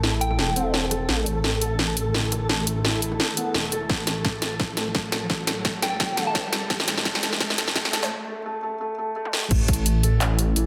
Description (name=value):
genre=half-time drum and bass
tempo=171 BPM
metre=4/4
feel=swing 55% on 16ths, half-time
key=unclear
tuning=A4 = 440 Hz
part: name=felt-muted upright piano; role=arpeggios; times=0.0-10.7 s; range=E3 to A4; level=-34 LUFS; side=equal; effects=digital delay
part: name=dark detuned saw bass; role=bass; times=0.0-10.7 s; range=E1 to A1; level=-29 LUFS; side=equal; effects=none
part: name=drum and bass drum kit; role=drums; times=0.0-10.6 s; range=crash cymbal, handclaps, hi-hat, snare drum, toms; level=-27 LUFS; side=equal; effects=overdrive, high-pass filter on hats, high-pass filter on snare, high-pass filter on toms, high-pass filter on cymbals
part: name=riser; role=sound effects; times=1.7-8.1 s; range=none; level=-39 LUFS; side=equal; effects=none
part: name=flickering grainy texture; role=texture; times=0.0-8.1 s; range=A4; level=-36 LUFS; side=equal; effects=built-in reverb
part: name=soft synth bell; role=melody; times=0.2-0.7, 5.8-6.6 s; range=G5 to A5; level=-32 LUFS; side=equal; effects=chorus, phaser, digital delay
part: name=electronic kick drum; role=drums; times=3.9-9.8 s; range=none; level=-28 LUFS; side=equal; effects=overdrive
room=moderate digital room reverb, RT60 1.1 s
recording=dense, heavily limited modern master, high-pass filter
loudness=-24 LUFS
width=mono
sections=0.0-9.5 A section; 9.5-10.7 B section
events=build-up 0.0-9.5; drum fill 0.0-8.1, 9.2; filter sweep 0.0-9.5; riser 1.7-8.1; break 8.1-9.5; drop 9.5-10.7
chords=0.0 Amadd9; 9.5 N.C.